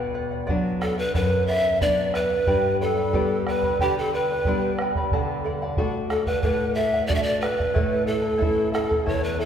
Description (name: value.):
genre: andean folk, Andean ensemble.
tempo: 91 BPM.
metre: 4/4.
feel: straight.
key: B minor.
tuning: A4 = 435 Hz.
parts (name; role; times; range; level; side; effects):
charango; accompaniment; 0.0-9.5 s; E4 to B5; -28 LUFS; equal; none.
nylon-string guitar; accompaniment; 0.0-9.5 s; E2 to F#4; -27 LUFS; left 2 dB; none.
bombo; percussion; 0.5-9.2 s; none; -29 LUFS; right 2 dB; none.
breathy pan flute; melody; 0.8-9.5 s; G4 to E5; -24 LUFS; right 1 dB; none.
room: wet church reverb, RT60 3.5 s.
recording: recorded in a church or concert hall.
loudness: -21 LUFS.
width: side -8 dB against mid.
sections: 0.0-9.5 A section.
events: none.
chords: 0.0 Bm; 2.5 G; 5.1 D; 7.8 A.